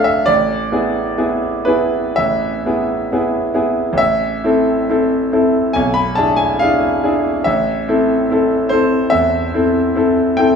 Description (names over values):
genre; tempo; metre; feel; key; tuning
classical, romantic nocturne for solo piano; 57-73 BPM; 4/4; rubato; A minor; A4 = 440 Hz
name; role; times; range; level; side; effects
clear concert grand piano; solo; 0.0-10.6 s; A1 to B5; -13 LUFS; equal; none
room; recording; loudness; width
wet recital hall reverb, RT60 1.4 s; small room ambience; -14 LUFS; side -6 dB against mid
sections
0.0-10.6 A section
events
none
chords
0.3 E7/A; 4.0 Am; 5.7 E7/B; 7.5 Am